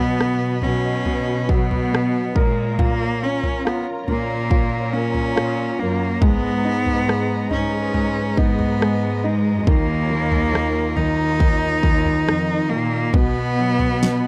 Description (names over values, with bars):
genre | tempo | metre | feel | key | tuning
pop ballad | 69 BPM | 4/4 | straight | Eb minor | A4 = 440 Hz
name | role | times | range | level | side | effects
bright cello | melody | 0.0-14.3 s | Ab3 to Eb4 | -26 LUFS | equal | none
clear baby grand piano | accompaniment | 0.0-14.3 s | B2 to Bb4 | -27 LUFS | equal | none
dark studio string section | sustained chords | 0.0-14.3 s | F4 to B5 | -32 LUFS | equal | none
clear chamber cello section | bass | 0.0-14.3 s | Eb2 to B2 | -27 LUFS | equal | none
pop drum kit | drums | 0.2-14.2 s | kick drum, rim click, snare drum, toms | -23 LUFS | equal | none
room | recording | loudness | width
little or no reverb | dry, close 1970s-style studio recording | -20 LUFS | mono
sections
0.0-14.3 A section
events
none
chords
0.0 B; 2.4 Bbm; 6.2 Abmadd9; 9.7 Ebsus2; 13.1 B